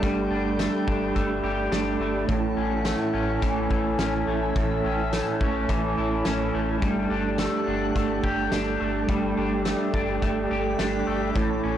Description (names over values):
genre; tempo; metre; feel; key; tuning
dream pop; 106 BPM; 4/4; straight; unclear; A4 = 440 Hz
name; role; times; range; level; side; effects
mellow electric guitar; accompaniment; 0.0-11.8 s; A2 to G4; -28 LUFS; right 5 dB; tremolo, ensemble chorus
mellow tonewheel organ; sustained chords; 0.0-11.8 s; E4 to B5; -29 LUFS; equal; fast rotary speaker
electric guitar at the edge of break-up; arpeggios; 0.0-11.8 s; A2 to G4; -28 LUFS; left 2 dB; lush chorus, digital delay
sub bass with octave; bass; 0.0-11.8 s; G1 to A1; -33 LUFS; equal; tube saturation
loose indie drum kit; drums; 0.0-11.5 s; hi-hat, kick drum, snare drum, tambourine; -29 LUFS; equal; none
drifting glass-harmonics texture; texture; 0.0-11.4 s; E5 to D6; -42 LUFS; left 2 dB; chorus, built-in reverb, digital delay
room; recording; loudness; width
light reverb, small room ambience; blown-out, overdriven recording, overdrive; -22 LUFS; side -10 dB against mid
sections
0.0-11.8 A section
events
none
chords
0.0 Gsus2; 2.3 A; 6.8 Gsus2